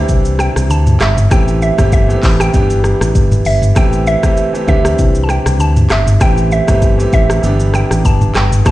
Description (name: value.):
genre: afrobeats.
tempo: 98 BPM.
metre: 4/4.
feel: swing 55% on 16ths.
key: A minor.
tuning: A4 = 440 Hz.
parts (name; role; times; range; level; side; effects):
mallet-like synth pluck; melody; 0.0-8.7 s; E5 to A5; -19 LUFS; right 2 dB; chorus, tape echo.
clear baby grand piano; accompaniment; 0.0-8.7 s; E3 to G4; -18 LUFS; right 1 dB; none.
fingered electric bass; bass; 0.0-8.7 s; G1 to D2; -13 LUFS; equal; none.
afro-pop drum kit; drums; 0.1-8.7 s; handclaps, hi-hat, kick drum, rim click, shaker, toms; -14 LUFS; equal; vintage 12-bit sampler grit.
room: digital ambience.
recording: played on a big sound system in a bare room, stone room reverb.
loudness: -10 LUFS.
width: side -16 dB against mid.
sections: 0.0-8.7 A section.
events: none.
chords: 0.0 D9sus4; 1.3 Am7; 2.5 G6; 3.8 Am7; 4.7 D9sus4; 6.2 Am7; 7.4 G6.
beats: 0.09 0.70 | 1.31 1.93 2.54 3.15 | 3.76 4.37 4.99 5.60 | 6.21 6.82 7.43 8.05 | 8.66.